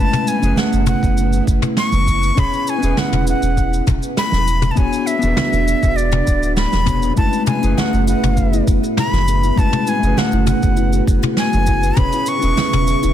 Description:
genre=sunset chillout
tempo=100 BPM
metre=4/4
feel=straight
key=F# minor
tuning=A4 = 439 Hz
part: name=breathy bright jazz flute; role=melody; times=0.0-13.1 s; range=D5 to C#6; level=-21 LUFS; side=left 1 dB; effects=digital delay
part: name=mellow electric guitar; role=accompaniment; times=0.0-13.1 s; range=G#3 to C#5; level=-21 LUFS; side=moving between left 6 dB and right 9 dB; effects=auto-pan, digital delay
part: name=soft string machine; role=sustained chords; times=0.0-13.1 s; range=A2 to B4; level=-26 LUFS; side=equal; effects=ensemble chorus
part: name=warm sub bass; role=bass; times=0.0-13.1 s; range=D1 to F#1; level=-18 LUFS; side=equal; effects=none
part: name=jazz brush drum kit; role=drums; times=0.1-13.1 s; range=cabasa, snare drum, toms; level=-22 LUFS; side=left 1 dB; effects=none
part: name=congas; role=percussion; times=0.4-12.7 s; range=none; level=-27 LUFS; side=right 4 dB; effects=none
part: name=electronic kick drum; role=drums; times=1.0-12.1 s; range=none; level=-18 LUFS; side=equal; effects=none
part: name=kalimba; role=arpeggios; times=7.2-13.1 s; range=E4 to B4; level=-26 LUFS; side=left 8 dB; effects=digital delay
room=light reverb, studio ambience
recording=dense, heavily limited modern master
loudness=-14 LUFS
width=side -11 dB against mid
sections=0.0-13.1 A section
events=none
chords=0.0 F#m11; 2.4 C#m7/E; 4.8 E13; 7.2 F#m11; 12.0 C#m7/E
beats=0.57 1.17 1.77 | 2.37 2.97 3.57 4.17 | 4.77 5.37 5.97 6.57 | 7.17 7.77 8.37 8.97 | 9.57 10.17 10.77 11.37 | 11.97 12.57

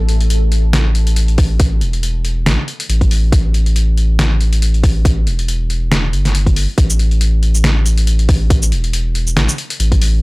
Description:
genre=deep dubstep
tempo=139 BPM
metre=4/4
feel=swing 55% on 16ths, half-time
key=unclear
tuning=A4 = 440 Hz
part: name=saturated sub bass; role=bass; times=0.0-10.2 s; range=E1 to A1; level=-13 LUFS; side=equal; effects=transformer saturation
part: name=trip hop sampler-style drum kit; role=drums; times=0.1-10.1 s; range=hi-hat, shaker, snare drum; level=-20 LUFS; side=equal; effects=none
part: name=electronic kick drum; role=drums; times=1.4-10.0 s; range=none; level=-14 LUFS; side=equal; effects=none
room=little or no reverb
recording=dry, gritty hardware recording, transformer saturation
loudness=-12 LUFS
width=side -23 dB against mid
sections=0.0-10.2 A section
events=none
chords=none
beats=0.30 0.73 1.17 | 1.60 2.03 2.46 2.89 | 3.32 3.76 4.19 4.62 | 5.05 5.48 5.91 6.35 | 6.78 7.21 7.64 8.07 | 8.50 8.94 9.37 9.80

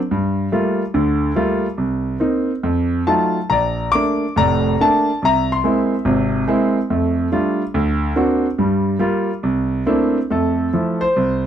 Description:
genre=solo jazz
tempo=142 BPM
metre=4/4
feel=swing 65% on 8ths, rubato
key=F major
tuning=A4 = 439 Hz
part: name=clear concert grand piano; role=solo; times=0.1-11.5 s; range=F1 to D6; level=-16 LUFS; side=equal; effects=none
room=moderate studio ambience, RT60 0.5 s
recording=dark, warm production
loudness=-16 LUFS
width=side -9 dB against mid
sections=0.0-10.3 A section; 10.3-11.5 B section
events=grand piano solo 10.3-11.5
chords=0.1 Gm9; 1.8 Cm7; 2.6 F7b9; 3.5 Bbmaj7; 5.2 Caug7; 6.9 F69; 7.7 D7b13; 8.6 Gm7; 9.4 C13; 10.3 Fmaj7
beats=| 0.10 0.53 0.95 1.36 | 1.79 2.21 2.64 3.08 | 3.51 3.94 4.38 4.80 | 5.23 5.65 6.07 6.49 | 6.91 7.33 7.75 8.17 | 8.59 9.02 9.44 9.88 | 10.31 10.74 11.17

